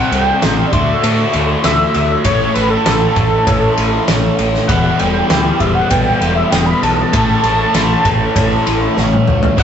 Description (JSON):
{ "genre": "indie rock", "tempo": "98 BPM", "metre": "4/4", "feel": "straight", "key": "unclear", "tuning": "A4 = 444 Hz", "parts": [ { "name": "octave-doubled lead", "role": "melody", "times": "0.0-9.6 s", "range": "A4 to B5", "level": "-17 LUFS", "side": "equal", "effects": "chorus" }, { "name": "biting overdriven guitar", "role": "riff", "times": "0.0-9.6 s", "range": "E2 to G4", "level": "-20 LUFS", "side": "right 3 dB", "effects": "none" }, { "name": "overdriven electric guitar", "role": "riff", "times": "0.0-9.6 s", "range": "A2 to E4", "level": "-19 LUFS", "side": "left 3 dB", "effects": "phaser" }, { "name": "growling fingered electric bass", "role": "bass", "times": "0.1-9.6 s", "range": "E1 to A2", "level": "-19 LUFS", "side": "equal", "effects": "overdrive" }, { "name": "loose indie drum kit", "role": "drums", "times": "0.1-9.6 s", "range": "crash cymbal, kick drum, ride cymbal, snare drum, toms", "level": "-16 LUFS", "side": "left 1 dB", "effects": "none" } ], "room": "moderate stone room reverb, RT60 1.4 s", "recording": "rough rehearsal-room recording, nothing above 8.0 kHz", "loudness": "-11 LUFS", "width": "side -8 dB against mid", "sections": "0.0-9.6 A section", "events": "drum fill 9.0-9.6", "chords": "0.0 Csus2; 0.7 Dadd9; 2.2 A; 4.7 Em; 7.1 A" }